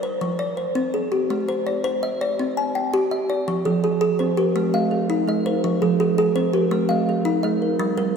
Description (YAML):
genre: southern african traditional, mbira-style interlocking cycle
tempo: 111 BPM (dotted quarters)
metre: 12/8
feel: straight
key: F equiheptatonic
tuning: A4 = 440 Hz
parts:
  - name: kalimba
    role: arpeggios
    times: 0.0-8.2 s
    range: F3 to Ab5+43c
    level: -21 LUFS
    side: left 1 dB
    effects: none
  - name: kalimba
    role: arpeggios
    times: 3.7-8.2 s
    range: F3 to Eb5+29c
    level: -21 LUFS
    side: right 4 dB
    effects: none
room: wet cathedral reverb, RT60 5.1 s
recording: in a vast, echoing space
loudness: -19 LUFS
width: side -6 dB against mid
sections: 0.0-3.5 A section; 3.5-8.2 A section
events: none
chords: 0.2 Fm; 1.3 Ab; 2.4 Cm; 3.5 Fm; 4.6 Ab; 5.6 Fm; 6.7 Ab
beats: 0.22 0.76 | 1.30 1.85 2.39 2.93 | 3.47 4.02 4.56 5.10 | 5.64 6.18 6.72 7.26 | 7.80